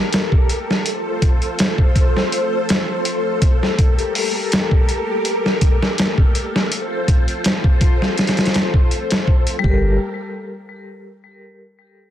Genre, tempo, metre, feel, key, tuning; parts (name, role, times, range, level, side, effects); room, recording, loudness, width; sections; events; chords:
trip hop; 82 BPM; 4/4; swing 53% on 16ths; G minor; A4 = 442 Hz
string machine, cellos; sustained chords; 0.0-10.0 s; F4 to C5; -22 LUFS; left 1 dB; phaser, ensemble chorus
trip hop sampler-style drum kit; drums; 0.1-9.8 s; hi-hat, kick drum, snare drum; -16 LUFS; equal
vibraphone with hard mallets; accompaniment; 9.6-9.9 s; G3 to Bb4; -24 LUFS; left 2 dB; tremolo, tape echo
round analog bass; bass; 9.6-10.0 s; G1; -18 LUFS; equal
light reverb; dense, heavily limited modern master; -15 LUFS; side -11 dB against mid
0.0-9.6 A section; 9.6-12.1 B section
0.0 Gmadd9; 0.9 F; 3.8 Gmadd9; 6.7 F; 9.6 Gmadd9